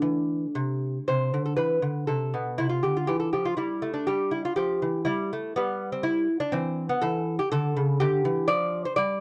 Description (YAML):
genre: classical, baroque-style dance for lute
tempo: 121 BPM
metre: 3/4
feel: rubato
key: A minor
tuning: A4 = 440 Hz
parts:
  - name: lute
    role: solo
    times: 0.0-9.2 s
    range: B2 to D5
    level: -27 LUFS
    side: equal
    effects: none
room: small room reverb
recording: dry, close 1970s-style studio recording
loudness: -27 LUFS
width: mono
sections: 0.0-1.1 A section; 1.1-9.2 A section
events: none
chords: 0.0 D5; 1.1 Am/C; 4.1 Em; 5.6 Em/G; 7.0 A7; 8.5 Dm/F